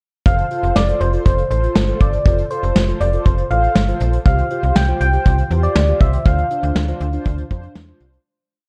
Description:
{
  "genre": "synth-pop",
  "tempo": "120 BPM",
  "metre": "4/4",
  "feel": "straight",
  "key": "F major",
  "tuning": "A4 = 440 Hz",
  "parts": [
    { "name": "soft struck synth lead", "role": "melody", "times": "0.3-7.8 s", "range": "C5 to G5", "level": "-23 LUFS", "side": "equal", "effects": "chorus, analog delay" },
    { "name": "mellow synth brass", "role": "accompaniment", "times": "0.3-8.2 s", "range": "D4 to C5", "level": "-28 LUFS", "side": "equal", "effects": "chorus" },
    { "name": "slap-like FM bass", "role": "bass", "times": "0.3-8.2 s", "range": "F1 to F2", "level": "-21 LUFS", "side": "equal", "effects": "none" },
    { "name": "vintage brush drum kit", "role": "drums", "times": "0.3-8.2 s", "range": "hi-hat, kick drum, snare drum", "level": "-20 LUFS", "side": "equal", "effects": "none" }
  ],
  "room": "light reverb, small room ambience",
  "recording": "dark, warm production",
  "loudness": "-17 LUFS",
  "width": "mono",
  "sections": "0.3-8.3 verse",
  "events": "fade-out 6.3-8.3",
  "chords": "0.3 F; 4.3 Csus4; 6.3 Dm7",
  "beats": "| 0.26 0.76 1.26 1.76 | 2.26 2.76 3.26 3.76 | 4.26 4.76 5.26 5.76 | 6.26 6.76 7.26 7.76"
}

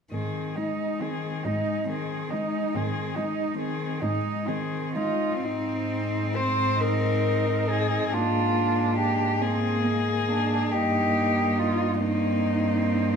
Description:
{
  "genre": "classical, lyrical piece for cello ensemble",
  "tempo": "40-49 BPM (dotted quarters)",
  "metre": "12/8",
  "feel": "rubato",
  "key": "Ab major",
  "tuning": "A4 = 443 Hz",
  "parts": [
    { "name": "dark cello", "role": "melody", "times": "0.1-13.2 s", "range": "Eb4 to C5", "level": "-28 LUFS", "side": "left 6 dB", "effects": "none" },
    { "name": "dark cello", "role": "second line", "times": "0.1-13.2 s", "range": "Bb3 to Eb4", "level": "-29 LUFS", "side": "right 5 dB", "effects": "none" },
    { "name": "warm cello", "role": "accompaniment", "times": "0.1-13.2 s", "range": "Eb3 to C4", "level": "-29 LUFS", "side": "equal", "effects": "none" },
    { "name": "rich cello", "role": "bass", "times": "0.1-13.2 s", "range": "G2 to Ab2", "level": "-30 LUFS", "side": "right 2 dB", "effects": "none" }
  ],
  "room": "wet recital hall reverb, RT60 1.4 s",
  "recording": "minimal, uncompressed stereo recording",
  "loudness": "-23 LUFS",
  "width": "side -6 dB against mid",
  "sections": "0.1-5.4 A section; 5.4-13.2 B section",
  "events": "none",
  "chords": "0.1 Ab; 8.1 Bb7/Ab; 10.7 Eb/G",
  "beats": "| 0.12 1.46 2.75 4.02 | 5.44 6.82 8.14 9.42 | 10.73 12.00"
}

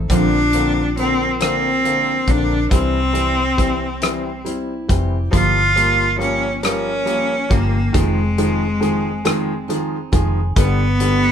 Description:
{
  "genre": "six-eight pop ballad",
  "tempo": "46 BPM (dotted quarters)",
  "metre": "6/8",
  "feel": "straight",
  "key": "F minor",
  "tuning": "A4 = 440 Hz",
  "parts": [
    { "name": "fingerpicked steel-string acoustic guitar", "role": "arpeggios", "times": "0.0-11.3 s", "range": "F3 to Bb4", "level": "-28 LUFS", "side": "right 4 dB", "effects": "none" },
    { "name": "vintage muted fingered electric bass", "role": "bass", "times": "0.0-11.3 s", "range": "F1 to C2", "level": "-21 LUFS", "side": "equal", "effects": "none" },
    { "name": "clear cello", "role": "melody", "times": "0.1-11.3 s", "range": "Ab3 to F4", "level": "-18 LUFS", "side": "equal", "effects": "none" },
    { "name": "clear baby grand piano", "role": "accompaniment", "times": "0.1-11.3 s", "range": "D3 to C4", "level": "-23 LUFS", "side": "left 1 dB", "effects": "none" },
    { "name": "loose indie drum kit", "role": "drums", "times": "0.1-11.2 s", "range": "hi-hat, kick drum, rim click", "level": "-20 LUFS", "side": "equal", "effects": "none" }
  ],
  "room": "moderate studio reverb, RT60 0.5 s",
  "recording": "band playing live in one room",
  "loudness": "-15 LUFS",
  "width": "side -8 dB against mid",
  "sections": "0.0-11.3 A section",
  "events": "none",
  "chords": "0.1 Bbadd9; 2.7 C; 5.3 Gm7b5; 7.9 Fm7; 10.6 G",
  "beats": "| 0.10 1.40 | 2.71 4.02 | 5.33 6.63 | 7.94 9.25 | 10.56"
}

